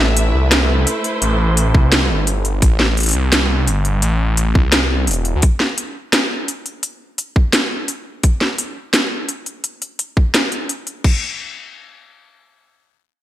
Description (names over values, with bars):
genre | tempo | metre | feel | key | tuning
half-time drum and bass | 171 BPM | 4/4 | swing 59% on 16ths, half-time | A minor | A4 = 440 Hz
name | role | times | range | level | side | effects
rich symphonic string section | sustained chords | 0.0-2.6 s | A3 to E5 | -22 LUFS | right 1 dB | sidechain pumping, low-pass filter
phased detuned saw bass | bass | 0.0-5.4 s | E1 to D2 | -16 LUFS | equal | phaser
drum and bass drum kit | drums | 0.2-11.1 s | crash cymbal, hi-hat, snare drum | -17 LUFS | equal | studio reverb, gated reverb
electronic kick drum | drums | 1.7-11.1 s | none | -13 LUFS | equal | studio reverb
room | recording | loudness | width
light reverb, digital ambience | bright 1980s-style digital production | -15 LUFS | side -13 dB against mid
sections
0.0-11.0 A section; 11.0-13.2 B section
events
filter sweep on string section 0.0-2.6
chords
0.0 Am; 5.4 N.C.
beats
0.17 0.52 0.87 | 1.22 1.57 1.92 2.27 | 2.62 2.97 3.32 3.67 | 4.03 4.38 4.73 5.08 | 5.43 5.78 6.13 6.48 | 6.83 7.18 7.53 7.88 | 8.24 8.59 8.94 9.29 | 9.64 9.99 10.34 10.69 | 11.04